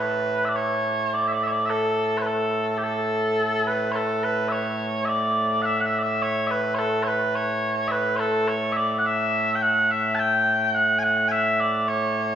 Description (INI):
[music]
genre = scottish traditional, Scottish pipe music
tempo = 106 BPM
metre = 4/4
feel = straight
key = A mixolydian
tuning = A4 = 440 Hz
[part]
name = mellow small bagpipes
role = solo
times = 0.0-12.4 s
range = A2 to A5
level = -21 LUFS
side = equal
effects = none
[sound]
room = wet recital hall reverb, RT60 1.7 s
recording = heard from further back in the room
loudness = -21 LUFS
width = side -9 dB against mid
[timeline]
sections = 0.0-4.0 A section; 4.0-12.4 A section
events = none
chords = none